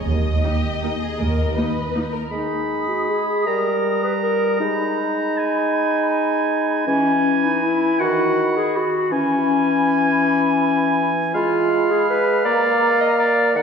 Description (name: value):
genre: classical, orchestral ballroom waltz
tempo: 160 BPM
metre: 3/4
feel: uneven beats, rubato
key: G# minor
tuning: A4 = 440 Hz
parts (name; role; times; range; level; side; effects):
- muted symphonic violin section; melody; 0.0-2.1 s; D#5; -29 LUFS; left 5 dB; none
- muted symphonic cello section; bass; 0.1-1.5 s; D#2; -28 LUFS; right 1 dB; none
- muted symphonic double bass section; bass; 0.1-1.5 s; D#2; -24 LUFS; right 2 dB; none
- muted studio violin section; second line; 0.4-2.3 s; G4 to B4; -30 LUFS; left 1 dB; none
- muted symphonic viola section; accompaniment; 0.4-2.0 s; A#3 to D#4; -28 LUFS; equal; none
- clear oboe; second line; 2.3-13.6 s; F5 to B5; -24 LUFS; right 2 dB; none
- large flute ensemble; second line; 2.3-13.6 s; Bb5 to D#6; -27 LUFS; equal; none
- warm clarinet; second line; 2.3-13.6 s; C#4 to Eb5; -20 LUFS; left 2 dB; none
- mellow bassoon; accompaniment; 2.3-13.6 s; Eb3 to Bb3; -22 LUFS; right 2 dB; none
room: wet concert hall reverb, RT60 1.9 s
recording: heard from further back in the room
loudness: -17 LUFS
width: side -6 dB against mid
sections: 0.0-2.3 A section; 2.3-13.6 B section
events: none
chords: 0.0 D#; 2.3 G#m; 3.5 D#/G; 4.6 G#m; 6.9 E; 8.0 B/D#; 9.1 E; 11.3 Fdim/Ab; 12.5 Bb